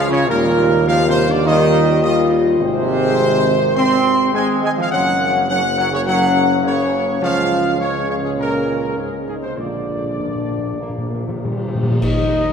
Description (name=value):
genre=classical, ceremonial fanfare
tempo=102 BPM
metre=4/4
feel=uneven beats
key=unclear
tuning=A4 = 440 Hz
part: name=warm trumpet section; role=melody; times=0.0-12.5 s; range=Ab4 to C6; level=-19 LUFS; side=equal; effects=none
part: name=mellow French horn section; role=sustained chords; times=0.0-12.5 s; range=F3 to F4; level=-21 LUFS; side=left 3 dB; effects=none
part: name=mellow trombone section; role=sustained chords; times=0.0-12.5 s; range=Ab2 to Eb4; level=-21 LUFS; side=right 2 dB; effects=none
part: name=mellow tuba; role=bass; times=0.0-12.5 s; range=Gb1 to Eb2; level=-22 LUFS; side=right 2 dB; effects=none
part: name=timpani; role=percussion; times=0.3-1.1, 9.6-12.0 s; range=Bb2 to Eb3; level=-23 LUFS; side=equal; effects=none
part: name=cymbal swell, clash cymbals and concert bass drum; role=percussion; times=9.6-12.5 s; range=none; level=-28 LUFS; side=left 1 dB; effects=none
room=wet church reverb, RT60 3.4 s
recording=none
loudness=-15 LUFS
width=side -6 dB against mid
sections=0.0-12.0 A section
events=timpani fill 9.6-12.0; band accent 12.0-12.5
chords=0.3 Ebadd9; 2.6 Ab; 4.9 Gb; 7.2 Db; 9.6 Bb; 12.0 Eb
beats=| 0.30 0.88 1.46 2.04 | 2.61 3.18 3.76 4.34 | 4.92 5.49 6.07 6.64 | 7.22 7.80 8.38 8.97 | 9.58 10.19 10.80 11.41 | 12.02